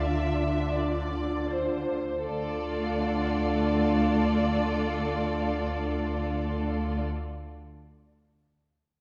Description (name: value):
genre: classical, slow romantic movement for string orchestra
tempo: 41 BPM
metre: 3/4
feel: rubato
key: D minor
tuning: A4 = 442 Hz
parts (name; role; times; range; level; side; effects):
- muted chamber violin section; melody; 0.0-7.0 s; D5; -37 LUFS; equal; none
- muted symphonic violin section; second line; 0.0-7.0 s; F4 to E5; -35 LUFS; equal; none
- muted chamber viola section; accompaniment; 0.0-7.0 s; A3 to F4; -32 LUFS; equal; none
- muted chamber double bass section; bass; 0.0-7.0 s; D2; -35 LUFS; equal; none
- muted studio cello section; bass; 0.0-7.0 s; D3; -40 LUFS; equal; none
room: wet scoring stage reverb, RT60 1.7 s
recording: heard from further back in the room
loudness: -28 LUFS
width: mono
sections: 0.0-2.3 A section; 2.3-6.7 B section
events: slowing down 0.0-2.3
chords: 0.0 Dm